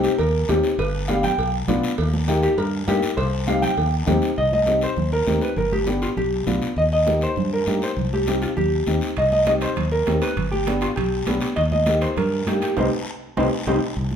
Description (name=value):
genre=latin, cumbia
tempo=200 BPM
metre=4/4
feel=straight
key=C minor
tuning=A4 = 440 Hz
part: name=vintage hollow-body jazz guitar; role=melody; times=0.0-13.8 s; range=Eb4 to G5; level=-22 LUFS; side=equal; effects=none
part: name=dark upright piano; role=accompaniment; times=0.0-13.8 s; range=Bb3 to G4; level=-25 LUFS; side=left 3 dB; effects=none
part: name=fingered electric bass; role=bass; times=0.0-14.2 s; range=G1 to G2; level=-24 LUFS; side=equal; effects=none
part: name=guiro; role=percussion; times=0.0-14.2 s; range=none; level=-35 LUFS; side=left 3 dB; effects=none
part: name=cowbell and timbales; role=percussion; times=0.2-4.2, 9.2-13.7 s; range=none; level=-32 LUFS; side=right 5 dB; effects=none
part: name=congas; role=percussion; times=0.5-14.2 s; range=none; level=-29 LUFS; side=right 4 dB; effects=none
room=moderate large studio reverb, RT60 1.1 s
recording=band playing live in one room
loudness=-19 LUFS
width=side -8 dB against mid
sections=0.0-4.4 A section; 4.4-14.0 B section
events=hollow-body jazz guitar solo 0.0-4.4; band accent 12.8-14.0; drum fill 13.1-14.0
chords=0.0 Cm; 0.8 G7; 2.0 Eb; 3.2 Cm; 5.6 G7; 6.8 Eb; 8.0 Cm; 10.4 G; 11.6 Eb; 12.8 Cm